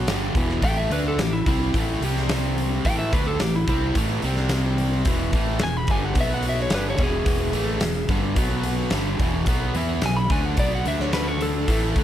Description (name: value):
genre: blues rock power trio and southern rock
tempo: 109 BPM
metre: 4/4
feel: straight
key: unclear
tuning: A4 = 439 Hz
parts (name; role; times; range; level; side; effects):
- cranked stack guitar; riff; 0.0-12.0 s; E2 to E4; -25 LUFS; equal; overdrive
- growling fingered electric bass; bass; 0.0-12.0 s; E1 to E2; -26 LUFS; equal; overdrive
- huge arena drum kit; drums; 0.1-12.0 s; hi-hat, kick drum, snare drum; -25 LUFS; equal; none
- lightly driven lead guitar; melody; 0.6-12.0 s; E4 to B5; -27 LUFS; equal; none
room: light reverb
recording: none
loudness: -20 LUFS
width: side -11 dB against mid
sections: 0.0-12.0 A section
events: none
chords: 0.1 E5; 0.6 A5; 2.0 C5; 2.8 A5; 4.2 C5; 5.1 E5; 6.2 B5; 6.7 E7; 8.4 B5; 8.9 E5; 9.5 B5; 10.9 D5